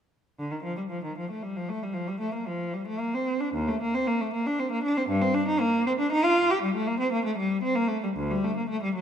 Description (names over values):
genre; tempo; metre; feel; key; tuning
classical, baroque-style suite movement for unaccompanied cello; 116 BPM; 3/4; uneven beats, rubato; Bb major; A4 = 436 Hz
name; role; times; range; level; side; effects
warm cello; solo; 0.4-9.0 s; D2 to G4; -25 LUFS; equal; none
room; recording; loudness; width
moderate scoring stage reverb, RT60 1.6 s; minimal, uncompressed stereo recording; -25 LUFS; side -8 dB against mid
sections
0.4-9.0 A section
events
none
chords
none